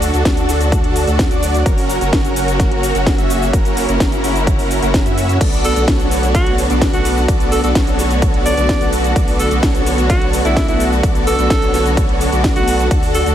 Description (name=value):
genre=EDM, festival progressive house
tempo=128 BPM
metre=4/4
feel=straight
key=B minor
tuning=A4 = 440 Hz
part: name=dark studio string section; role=sustained chords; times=0.0-13.3 s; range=C#3 to F#4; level=-22 LUFS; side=equal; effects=sidechain pumping
part: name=dense compressed supersaw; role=riff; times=0.0-13.3 s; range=B3 to F#5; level=-19 LUFS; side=right 1 dB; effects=sidechain pumping, ping-pong delay
part: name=saturated sub bass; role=bass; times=0.0-13.3 s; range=F#1 to F#2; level=-20 LUFS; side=equal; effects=sidechain pumping
part: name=house drum kit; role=drums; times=0.0-13.3 s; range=crash cymbal, hi-hat, ride cymbal, shaker, snare drum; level=-22 LUFS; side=equal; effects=overdrive
part: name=electronic kick drum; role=drums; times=0.3-13.0 s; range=none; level=-17 LUFS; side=equal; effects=none
part: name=bright alto saxophone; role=melody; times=5.6-13.3 s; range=E4 to D5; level=-21 LUFS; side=equal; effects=ping-pong delay
room=little or no reverb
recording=none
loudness=-12 LUFS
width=side -10 dB against mid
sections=0.0-13.3 A section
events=none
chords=0.0 D; 1.7 F#; 5.4 Bm7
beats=0.25 0.72 1.19 | 1.66 2.13 2.60 3.07 | 3.54 4.00 4.47 4.94 | 5.41 5.88 6.35 6.82 | 7.29 7.75 8.22 8.69 | 9.16 9.63 10.10 10.57 | 11.04 11.50 11.97 12.44 | 12.91